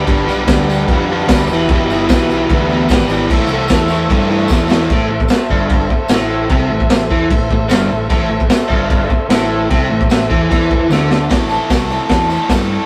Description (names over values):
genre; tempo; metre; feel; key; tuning
garage rock duo or trio; 150 BPM; 4/4; straight; A minor; A4 = 440 Hz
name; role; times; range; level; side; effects
combo organ; sustained chords; 0.0-11.3 s; G4 to F5; -23 LUFS; equal; none
biting overdriven guitar; riff; 0.0-12.9 s; E2 to A4; -19 LUFS; equal; spring reverb
growling picked electric bass; bass; 0.0-12.8 s; E1 to G2; -22 LUFS; equal; overdrive
raw garage drum kit; drums; 0.1-12.6 s; crash cymbal, hi-hat, kick drum, snare drum; -18 LUFS; equal; none
tambourine; percussion; 0.1-12.6 s; none; -37 LUFS; equal; none
room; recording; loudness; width
moderate stone room reverb, RT60 1.0 s; rough rehearsal-room recording, warm saturation; -14 LUFS; mono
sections
0.0-4.9 A section; 4.9-11.3 B section; 11.3-12.9 C section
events
drum fill 4.5-4.9, 10.9-11.3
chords
0.0 G; 1.5 Em; 3.3 Am